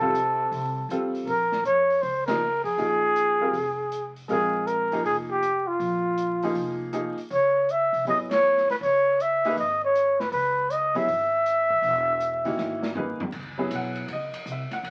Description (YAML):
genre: modal jazz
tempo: 159 BPM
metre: 4/4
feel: swing 65% on 8ths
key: unclear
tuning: A4 = 440 Hz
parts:
  - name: breathy trumpet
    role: melody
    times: 0.0-13.0 s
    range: F4 to Fb5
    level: -25 LUFS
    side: equal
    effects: none
  - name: warm tenor saxophone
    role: second line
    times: 0.0-0.9 s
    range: C3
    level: -40 LUFS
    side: equal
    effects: none
  - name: clear upright piano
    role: accompaniment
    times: 0.0-14.9 s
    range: Eb3 to F#5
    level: -32 LUFS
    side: equal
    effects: none
  - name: upright bass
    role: bass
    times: 0.0-14.9 s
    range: Fb1 to F2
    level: -41 LUFS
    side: equal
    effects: none
  - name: open jazz drum kit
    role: drums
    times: 0.0-14.9 s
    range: crash cymbal, hi-hat, kick drum, ride cymbal, snare drum, toms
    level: -41 LUFS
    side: equal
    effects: none
room: moderate studio reverb, RT60 0.6 s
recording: very old 78 rpm record, vinyl crackle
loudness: -25 LUFS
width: mono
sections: 0.0-1.3 A section; 1.3-13.3 B section; 13.3-14.9 C section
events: band accent 2.2, 8.3; drum fill 12.6-13.3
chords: 0.0 F; 1.3 Bb7(no3); 7.3 Dbm9; 13.3 C#m11